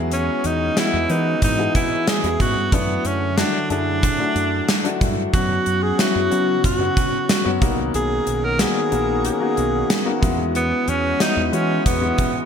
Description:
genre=1980s-style pop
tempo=92 BPM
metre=4/4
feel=straight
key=unclear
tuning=A4 = 441 Hz
part: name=clear baby grand piano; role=accompaniment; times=0.0-12.5 s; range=E3 to F#5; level=-24 LUFS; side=left 4 dB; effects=none
part: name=lush unison pad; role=sustained chords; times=0.0-12.5 s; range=C#3 to A#4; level=-28 LUFS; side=right 1 dB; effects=chorus
part: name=fingered electric bass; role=bass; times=0.0-12.1 s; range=A#1 to F#3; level=-25 LUFS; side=right 1 dB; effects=none
part: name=clear tenor saxophone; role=melody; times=0.1-12.5 s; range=B3 to A#4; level=-22 LUFS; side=right 1 dB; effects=digital delay
part: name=gated 80s drum kit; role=drums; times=0.1-12.3 s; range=hi-hat, kick drum, snare drum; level=-21 LUFS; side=equal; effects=gated reverb
room=moderate plate reverb, RT60 2.2 s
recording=bright 1980s-style digital production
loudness=-17 LUFS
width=side -7 dB against mid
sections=0.0-12.5 A section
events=none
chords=0.0 Eadd9; 2.7 Dadd9/F#; 5.3 F#sus4; 7.6 Bmaj7; 10.2 Eadd9

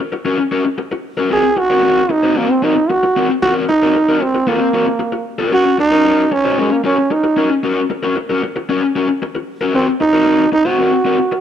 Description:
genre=funk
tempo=114 BPM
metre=4/4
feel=straight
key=Eb dorian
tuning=A4 = 440 Hz
part: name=raw garage guitar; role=accompaniment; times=0.0-11.4 s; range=C4 to C5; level=-17 LUFS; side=left 4 dB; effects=overdrive
part: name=growling trombone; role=melody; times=1.3-11.4 s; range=Ab3 to Ab4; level=-14 LUFS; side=right 2 dB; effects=none
room=moderate echo chamber reverb, RT60 1.7 s, small room reverb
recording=dark, warm production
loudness=-13 LUFS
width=side -9 dB against mid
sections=0.0-11.4 A section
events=none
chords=0.0 Ebm7 (rootless); 1.3 Ab9/Bb (rootless); 5.5 Ebm7; 9.7 Cm7b5

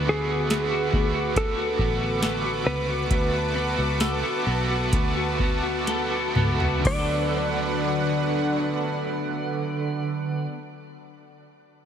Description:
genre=dream pop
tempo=60-71 BPM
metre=4/4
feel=straight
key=D major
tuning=A4 = 443 Hz
part: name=cranked stack guitar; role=accompaniment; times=0.0-10.6 s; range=D3 to F#4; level=-30 LUFS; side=right 6 dB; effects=overdrive, tremolo, lush chorus, shimmer reverb
part: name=warm analog pad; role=sustained chords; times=0.0-10.5 s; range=D3 to D6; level=-29 LUFS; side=right 1 dB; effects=chorus, tremolo, shimmer reverb
part: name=clean electric guitar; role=arpeggios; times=0.0-10.6 s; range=D3 to A4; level=-30 LUFS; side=left 4 dB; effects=ensemble chorus, digital delay, shimmer reverb
part: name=vintage muted picked electric bass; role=bass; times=0.0-10.5 s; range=A1 to D2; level=-29 LUFS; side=equal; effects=none
part: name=clean lap steel guitar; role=melody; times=0.1-10.5 s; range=G#4 to D5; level=-30 LUFS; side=equal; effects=digital delay, shimmer reverb
part: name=booming analog drum machine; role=drums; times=0.5-7.1 s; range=crash cymbal, hi-hat, kick drum, snare drum, tambourine, toms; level=-25 LUFS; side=equal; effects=overdrive
part: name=worn celesta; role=texture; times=2.6-10.5 s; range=D6 to E6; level=-43 LUFS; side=left 2 dB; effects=none
room=moderate lush hall reverb, RT60 2.9 s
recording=none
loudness=-22 LUFS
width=side -8 dB against mid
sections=0.0-6.8 A section; 6.8-10.8 B section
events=slowing down 0.0-6.8; drum fill 5.9-6.8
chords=0.0 D6

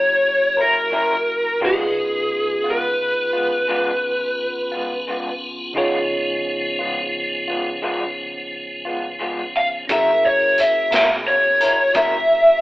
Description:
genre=slow blues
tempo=58 BPM (dotted quarters)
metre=12/8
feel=straight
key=Db mixolydian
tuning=A4 = 440 Hz
part: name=lead guitar through a small cranked amp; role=melody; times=0.0-12.6 s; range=Ab4 to F5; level=-16 LUFS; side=equal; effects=overdrive
part: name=bell-like tine electric piano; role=accompaniment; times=0.0-12.6 s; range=Db3 to Db5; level=-28 LUFS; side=right 1 dB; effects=medium stereo tremolo
part: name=tonewheel organ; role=sustained chords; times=0.0-12.6 s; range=F3 to D5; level=-28 LUFS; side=equal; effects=overdrive, chorus vibrato, slow rotary speaker
part: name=electric guitar through a small old amp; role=accompaniment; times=0.6-12.2 s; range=Db3 to Bb4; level=-25 LUFS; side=left 1 dB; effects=tremolo
part: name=vintage muted fingered electric bass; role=bass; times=9.9-12.6 s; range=Gb2 to Cb3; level=-43 LUFS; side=equal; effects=none
part: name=crunchy breakbeat drum kit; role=drums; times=9.9-12.1 s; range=hi-hat, kick drum, snare drum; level=-23 LUFS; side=equal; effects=none
room=moderate stone room reverb, RT60 1.4 s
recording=band playing live in one room, telephone sound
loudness=-17 LUFS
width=side -18 dB against mid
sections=0.0-12.6 A section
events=none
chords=0.0 Gb7; 1.6 Db7; 9.9 Gb7

